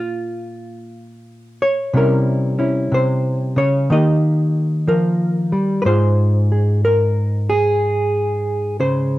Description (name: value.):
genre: solo jazz.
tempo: 61 BPM.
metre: 4/4.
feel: swing 66% on 8ths.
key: Ab major from 5.8 s.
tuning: A4 = 438 Hz.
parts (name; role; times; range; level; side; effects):
hollow-body jazz guitar; solo; 0.0-9.2 s; Ab2 to Eb5; -16 LUFS; equal; none.
room: little or no reverb.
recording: dry, close 1970s-style studio recording.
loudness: -15 LUFS.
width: side -16 dB against mid.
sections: 0.0-5.8 A section; 5.8-9.2 B section.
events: hollow-body jazz guitar solo 0.0-5.8.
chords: 0.0 Bbm; 1.9 C7b9; 3.9 Eb; 5.8 Ab6.